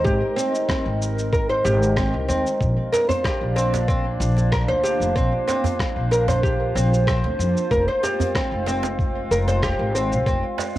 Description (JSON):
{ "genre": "organic downtempo", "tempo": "94 BPM", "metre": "4/4", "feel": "straight", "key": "unclear", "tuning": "A4 = 445 Hz", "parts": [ { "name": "warbly tape-like pad", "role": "sustained chords", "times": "0.0-10.8 s", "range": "Ab3 to F5", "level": "-28 LUFS", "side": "equal", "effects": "chorus, built-in reverb, sidechain pumping, cassette tape" }, { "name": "oud", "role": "arpeggios", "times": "0.0-10.4 s", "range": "C4 to C5", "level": "-23 LUFS", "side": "equal", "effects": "cassette tape, tape echo" }, { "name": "upright bass", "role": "bass", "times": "0.0-10.4 s", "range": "F1 to F2", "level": "-23 LUFS", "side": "equal", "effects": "none" }, { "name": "electronic kick drum", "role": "drums", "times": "0.1-10.4 s", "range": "none", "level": "-25 LUFS", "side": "equal", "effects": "small room ambience, cassette tape" }, { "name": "electronic shaker and rim click", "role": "drums", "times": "0.1-10.7 s", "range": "none", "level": "-31 LUFS", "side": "equal", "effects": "small room ambience, cassette tape" }, { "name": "djembe", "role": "percussion", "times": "2.9-10.8 s", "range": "none", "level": "-28 LUFS", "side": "right 4 dB", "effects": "none" } ], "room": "moderate spring reverb, RT60 2.5 s", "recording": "home recording on cassette", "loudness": "-19 LUFS", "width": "side -15 dB against mid", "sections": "0.0-10.8 A section", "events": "none", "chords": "0.0 Ab; 2.6 Bb; 7.7 Fm" }